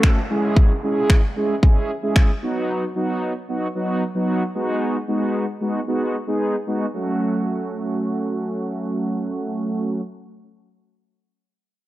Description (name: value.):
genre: dance-pop.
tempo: 113 BPM.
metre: 4/4.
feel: straight.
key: F# dorian.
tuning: A4 = 440 Hz.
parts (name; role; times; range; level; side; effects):
mellow synth brass; accompaniment; 0.0-10.0 s; F#3 to A4; -22 LUFS; right 1 dB; chorus, sidechain pumping, low-pass filter.
house drum kit; drums; 0.0-2.3 s; finger snaps, kick drum; -15 LUFS; equal; none.
downlifter; sound effects; 0.0-2.7 s; none; -36 LUFS; equal; none.
room: light reverb, digital ambience.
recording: dry, gritty hardware recording.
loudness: -19 LUFS.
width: side -15 dB against mid.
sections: 0.0-6.9 A section; 6.9-11.2 B section.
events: none.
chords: 0.3 C#m; 2.4 B; 4.5 G#m7; 6.9 F#m.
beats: 0.04 | 0.57 1.10 1.63 2.16 | 2.69 3.22 3.75 4.28 | 4.81 5.34 5.88 6.41 | 6.94 7.47 8.00 8.53 | 9.06 9.59.